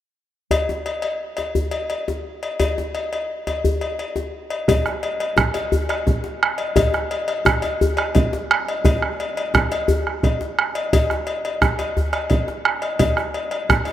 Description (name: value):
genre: west african traditional, West African drum ensemble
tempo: 115 BPM (dotted quarters)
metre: 12/8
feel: straight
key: none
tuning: none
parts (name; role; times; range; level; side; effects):
- cowbell; percussion; 0.5-13.9 s; none; -25 LUFS; left 3 dB; none
- djembe; percussion; 0.5-13.9 s; none; -23 LUFS; left 2 dB; none
- bombo; percussion; 4.7-13.9 s; none; -20 LUFS; right 3 dB; none
room: moderate plate reverb, RT60 3.4 s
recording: dreamy mix soaked in reverb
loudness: -19 LUFS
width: side -12 dB against mid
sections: 0.5-4.7 A section; 4.7-13.9 B section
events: none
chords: none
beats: | 0.51 1.03 1.55 2.07 | 2.59 3.12 3.64 4.16 | 4.68 5.20 5.72 6.24 | 6.76 7.28 7.80 8.32 | 8.85 9.36 9.88 10.40 | 10.92 11.44 11.96 12.48 | 13.00 13.52